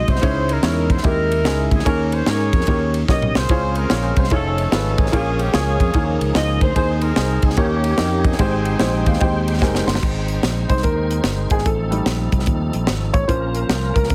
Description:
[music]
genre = uptempo gospel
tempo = 147 BPM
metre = 4/4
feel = swing 64% on 8ths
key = Ab major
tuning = A4 = 439 Hz
[part]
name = warm horn section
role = melody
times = 0.0-9.6 s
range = Bb3 to Eb5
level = -26 LUFS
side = equal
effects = none
[part]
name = warm upright piano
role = accompaniment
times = 0.0-14.1 s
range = Ab2 to C6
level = -25 LUFS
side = equal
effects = none
[part]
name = fingered electric bass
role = bass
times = 0.0-14.1 s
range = F1 to Ab2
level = -24 LUFS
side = equal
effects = none
[part]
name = tight funk drum kit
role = drums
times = 0.1-14.1 s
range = crash cymbal, hi-hat, kick drum, ride cymbal, snare drum, toms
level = -23 LUFS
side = equal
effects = none
[part]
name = tonewheel organ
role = sustained chords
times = 3.5-14.1 s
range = F3 to G5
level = -31 LUFS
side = equal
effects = fast rotary speaker, chorus vibrato
[sound]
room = studio reverb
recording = heavily compressed radio sound, multiband compression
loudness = -18 LUFS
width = mono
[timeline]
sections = 0.0-10.0 A section; 10.0-14.1 B section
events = drum fill 3.1-3.5, 9.6-10.0; upright piano fill 8.8-10.0; upright piano solo 10.0-14.1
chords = 0.2 Dbmadd9; 1.9 Eb7sus4; 2.7 Eb7; 3.5 Dbmaj7; 4.3 F7alt; 5.1 Bbm7; 5.9 Eb9sus4; 6.8 Ab/Eb; 7.6 Eb7; 8.4 Abmaj7; 10.0 Ab; 11.7 F7/A; 13.3 Bbm

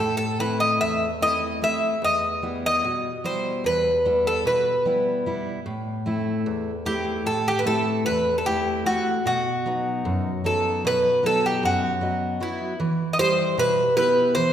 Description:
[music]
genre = greek folk, Greek bouzouki band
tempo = 150 BPM (eighths)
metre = 9/8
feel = straight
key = E harmonic minor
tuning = A4 = 439 Hz
[part]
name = Greek bouzouki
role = melody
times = 0.0-14.5 s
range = E4 to E5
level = -22 LUFS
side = equal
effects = none
[part]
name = picked steel-string acoustic guitar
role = accompaniment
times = 0.0-14.5 s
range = E2 to D#5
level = -26 LUFS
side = equal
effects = none
[sound]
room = wet scoring stage reverb, RT60 1.6 s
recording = recorded in a church or concert hall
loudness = -21 LUFS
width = side -9 dB against mid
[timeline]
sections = 0.0-12.8 A section; 12.8-14.5 B section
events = speeding up 0.0-14.5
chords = 0.0 Am; 2.0 Em; 5.7 Am; 9.3 B; 12.8 Em

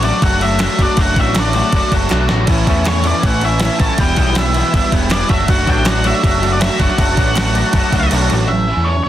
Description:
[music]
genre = indie rock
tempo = 160 BPM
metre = 4/4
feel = straight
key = unclear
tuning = A4 = 445 Hz
[part]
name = octave-fuzz lead guitar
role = melody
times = 0.0-9.1 s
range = C#5 to A5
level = -20 LUFS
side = equal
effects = distortion, digital delay
[part]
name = thick fuzz guitar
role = riff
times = 0.0-9.1 s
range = E2 to F#4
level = -21 LUFS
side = right 6 dB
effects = distortion, analog chorus
[part]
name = twangy electric guitar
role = riff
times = 0.0-9.0 s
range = A2 to F#4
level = -20 LUFS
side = left 6 dB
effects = analog chorus
[part]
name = growling picked electric bass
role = bass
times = 0.0-9.1 s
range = E1 to E2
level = -18 LUFS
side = equal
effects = overdrive
[part]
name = detuned 8-bit digital drum machine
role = drums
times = 0.0-8.4 s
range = crash cymbal, kick drum, snare drum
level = -17 LUFS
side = equal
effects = none
[part]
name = group handclap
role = percussion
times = 0.6-8.2 s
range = none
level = -30 LUFS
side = right 6 dB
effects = none
[part]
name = tonewheel organ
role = sustained chords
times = 2.5-8.5 s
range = E4 to A5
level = -30 LUFS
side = equal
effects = none
[sound]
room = little or no reverb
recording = dense, heavily limited modern master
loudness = -12 LUFS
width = side -12 dB against mid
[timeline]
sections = 0.0-8.5 A section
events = drum fill 2.1-2.5; kick and snare drop out 8.1-8.5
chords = 0.0 D/F#; 2.5 A; 4.0 Em; 5.3 D/F#; 8.5 A

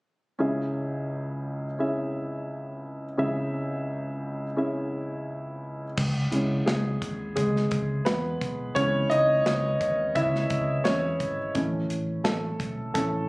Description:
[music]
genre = piano-driven pop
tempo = 86 BPM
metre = 4/4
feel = swing 56% on 16ths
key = C# minor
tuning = A4 = 439 Hz
[part]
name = warm upright piano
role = accompaniment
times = 0.4-13.3 s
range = C#2 to E5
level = -26 LUFS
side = equal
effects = plate reverb
[part]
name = vintage muted fingered electric bass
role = bass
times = 6.0-13.2 s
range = G#1 to E2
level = -30 LUFS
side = equal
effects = none
[part]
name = modern studio drum kit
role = drums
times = 6.0-13.1 s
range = crash cymbal, hi-hat, kick drum, snare drum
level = -31 LUFS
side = equal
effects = none
[sound]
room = light reverb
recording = recorded on a phone in the room, club reverb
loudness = -25 LUFS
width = side -25 dB against mid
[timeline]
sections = 0.4-6.0 A section; 6.0-13.3 B section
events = upright piano solo 6.0-13.3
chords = 0.4 C#m; 11.6 A

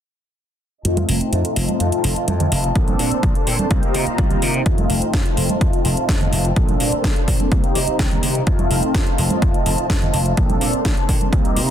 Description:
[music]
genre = filtered disco house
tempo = 126 BPM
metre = 4/4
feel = straight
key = F mixolydian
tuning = A4 = 440 Hz
[part]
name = mellow synth brass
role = accompaniment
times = 0.8-11.7 s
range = A3 to A4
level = -22 LUFS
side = equal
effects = chorus, phaser, sidechain pumping, low-pass filter
[part]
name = clear studio string section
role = sustained chords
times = 0.8-11.7 s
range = D4 to Bb5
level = -28 LUFS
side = equal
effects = sidechain pumping, low-pass filter
[part]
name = glassy slap bass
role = bass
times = 0.8-11.7 s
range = F1 to C3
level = -22 LUFS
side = equal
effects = sidechain pumping, low-pass filter
[part]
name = house drum kit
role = drums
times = 0.8-11.7 s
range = hi-hat, snare drum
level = -25 LUFS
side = equal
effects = overdrive, sidechain pumping on hats
[part]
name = tambourine and congas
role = percussion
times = 0.8-11.7 s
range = none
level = -27 LUFS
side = right 4 dB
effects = sidechain pumping on perc, low-pass filter on perc
[part]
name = electronic kick drum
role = drums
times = 2.8-11.4 s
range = none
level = -19 LUFS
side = equal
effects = overdrive
[part]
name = swell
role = sound effects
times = 3.9-4.7 s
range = none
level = -30 LUFS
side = left 3 dB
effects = none
[sound]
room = digital ambience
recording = dense, heavily limited modern master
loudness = -16 LUFS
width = side -10 dB against mid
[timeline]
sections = 0.9-4.7 A section; 4.7-11.7 B section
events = filter sweep 0.9-4.7, 4.7-11.7; swell 3.9-4.7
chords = 0.9 F7; 2.8 Bbmaj9; 3.7 Cm7; 4.7 F7; 6.6 Bbmaj9; 7.5 Cm7; 8.5 F7; 10.4 Bbmaj9

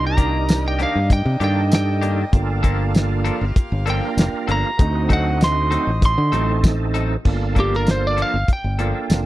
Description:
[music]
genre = straight-eighth soul blues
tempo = 98 BPM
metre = 4/4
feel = straight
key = G minor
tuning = A4 = 440 Hz
[part]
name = lightly driven lead guitar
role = melody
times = 0.0-9.3 s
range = G4 to C6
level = -24 LUFS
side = right 1 dB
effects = none
[part]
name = overdriven tonewheel organ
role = accompaniment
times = 0.0-9.3 s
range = A3 to Bb4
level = -25 LUFS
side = right 6 dB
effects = slow rotary speaker, chorus vibrato
[part]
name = clear horn section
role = sustained chords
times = 0.0-7.2 s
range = Bb3 to F5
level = -32 LUFS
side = left 2 dB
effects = none
[part]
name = fingered electric bass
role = bass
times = 0.0-9.2 s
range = F1 to D3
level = -21 LUFS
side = equal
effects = none
[part]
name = clean electric guitar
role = stabs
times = 0.2-9.0 s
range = Eb3 to A4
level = -28 LUFS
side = left 6 dB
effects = lush chorus
[part]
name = cloth-damped thuddy drum kit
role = drums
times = 0.2-9.3 s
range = crash cymbal, hi-hat, kick drum, snare drum, tambourine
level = -17 LUFS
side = equal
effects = none
[sound]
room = small room ambience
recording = dry, close 1970s-style studio recording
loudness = -16 LUFS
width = side -16 dB against mid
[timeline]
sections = 0.0-7.2 A section; 7.2-9.3 B section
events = lead electric guitar solo 0.0-7.2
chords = 0.0 Cm9; 2.3 Gm9; 4.8 D7b9; 7.2 Gm9

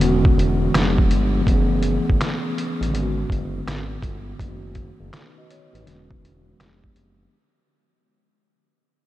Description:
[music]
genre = lo-fi hip hop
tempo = 82 BPM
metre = 4/4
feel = swing 66% on 16ths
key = unclear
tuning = A4 = 442 Hz
[part]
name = mellow tine electric piano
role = accompaniment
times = 0.0-7.4 s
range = D3 to D#5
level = -23 LUFS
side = equal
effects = medium stereo tremolo, cassette tape, low-pass filter
[part]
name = smooth synth bass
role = bass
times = 0.0-7.3 s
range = E1 to A1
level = -24 LUFS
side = equal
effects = none
[part]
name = lo-fi sampler-style drum kit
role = drums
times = 0.0-7.2 s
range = finger snaps, hi-hat, kick drum, snare drum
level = -22 LUFS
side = equal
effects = none
[sound]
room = light reverb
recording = none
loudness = -18 LUFS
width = side -15 dB against mid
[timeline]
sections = 0.0-7.3 A section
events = fade-out 0.0-7.3; filter sweep on tine electric piano 0.0-7.3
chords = 0.0 E13; 0.7 Fdim7; 1.5 F#m11; 2.9 Bm69/F#; 4.4 B9/F#; 5.9 E13; 6.6 Fdim7

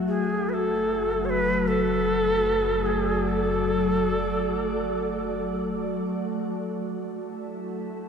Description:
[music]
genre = ambient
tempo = free time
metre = none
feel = none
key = unclear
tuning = A4 = 439 Hz
[part]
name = glassy FM pad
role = sustained chords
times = 0.0-8.1 s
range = F#3 to E5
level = -26 LUFS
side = left 2 dB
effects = ensemble chorus, built-in reverb
[part]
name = deep rumbling drone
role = bass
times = 0.8-8.1 s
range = F#1 to A1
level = -35 LUFS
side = right 1 dB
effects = built-in reverb
[part]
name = bright reedy shakuhachi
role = melody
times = 0.1-5.7 s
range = G#4 to C#5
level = -26 LUFS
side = right 1 dB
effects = ping-pong delay
[sound]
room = wet cathedral reverb, RT60 6.4 s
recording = in a vast, echoing space, cassette tape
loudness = -23 LUFS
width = side -6 dB against mid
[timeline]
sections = 0.0-6.5 A section; 6.5-8.1 A section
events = none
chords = 0.1 D/F#; 6.5 A5

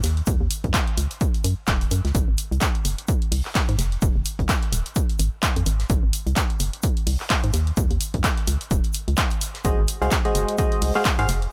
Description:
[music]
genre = piano house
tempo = 128 BPM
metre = 4/4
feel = swing 57% on 16ths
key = Ab mixolydian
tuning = A4 = 440 Hz
[part]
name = organ-like FM bass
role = bass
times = 0.0-11.5 s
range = Eb1 to Ab2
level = -26 LUFS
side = equal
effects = sidechain pumping
[part]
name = punchy analog drum machine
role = drums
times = 0.0-11.5 s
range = handclaps, hi-hat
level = -29 LUFS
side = equal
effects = none
[part]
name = tight funk drum kit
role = drums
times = 0.0-11.4 s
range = hi-hat, shaker, snare drum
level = -38 LUFS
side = equal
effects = sidechain pumping on hats, high-pass filter on hats, high-pass filter on snare, sidechain pumping on perc, high-pass filter on perc, high-pass filter on room
[part]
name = electronic kick drum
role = drums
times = 0.3-11.2 s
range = none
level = -26 LUFS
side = equal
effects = none
[part]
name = barking FM electric piano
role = riff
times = 9.6-11.3 s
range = Ab3 to F5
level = -26 LUFS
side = equal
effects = chorus, sidechain pumping, dub echo
[sound]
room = small room ambience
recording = none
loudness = -23 LUFS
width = mono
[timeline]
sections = 0.0-11.5 A section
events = none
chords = 0.3 Ebm7; 2.1 Ab7; 3.8 Fm; 5.7 Ab; 7.8 Eb7(no3); 9.6 Ab7

